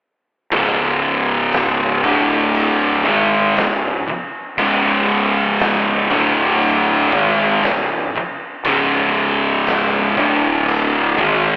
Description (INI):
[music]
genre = stoner and doom metal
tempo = 59 BPM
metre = 4/4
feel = straight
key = unclear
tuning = A4 = 440 Hz
[part]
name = thick fuzz guitar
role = riff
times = 0.5-11.6 s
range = C#2 to G#3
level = -14 LUFS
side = equal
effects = distortion
[part]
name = fuzz fingered electric bass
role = bass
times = 0.5-11.6 s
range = C#1 to G#1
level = -23 LUFS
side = equal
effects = overdrive, tube saturation
[part]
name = oversized low-tuned drum kit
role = drums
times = 0.5-11.4 s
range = crash cymbal, kick drum, snare drum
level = -23 LUFS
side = equal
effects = none
[sound]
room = light reverb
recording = live gig heard through the venue's PA, club reverb, telephone sound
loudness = -14 LUFS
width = side -24 dB against mid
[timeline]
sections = 0.5-11.6 A section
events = none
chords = 0.5 C#5; 2.0 D5; 3.1 C#5; 6.1 D5; 7.1 C#5; 10.2 D5